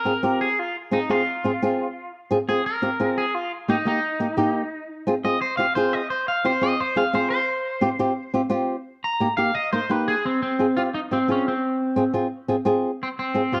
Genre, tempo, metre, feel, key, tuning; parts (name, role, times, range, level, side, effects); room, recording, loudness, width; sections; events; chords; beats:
latin; 174 BPM; 4/4; straight; F minor; A4 = 439 Hz
electric guitar at the edge of break-up; melody; 0.0-13.6 s; C4 to Bb5; -26 LUFS; equal; spring reverb
flamenco guitar; accompaniment; 0.1-13.6 s; Bb3 to Bb4; -25 LUFS; equal
moderate studio reverb, RT60 0.5 s; dark, warm production; -23 LUFS; mono
0.0-10.2 A section; 10.2-13.6 B section
clean electric guitar solo 0.0-10.2
0.0 Fm; 3.3 Eb; 4.7 Fm; 8.9 Eb; 10.2 Fm
0.23 | 0.58 0.93 1.27 1.62 | 1.96 2.31 2.65 3.00 | 3.35 3.69 4.04 4.38 | 4.73 5.07 5.42 5.76 | 6.11 6.45 6.80 7.14 | 7.49 7.83 8.18 8.52 | 8.87 9.21 9.56 9.90 | 10.25 10.59 10.94 11.28 | 11.63 11.97 12.32 12.66 | 13.01 13.36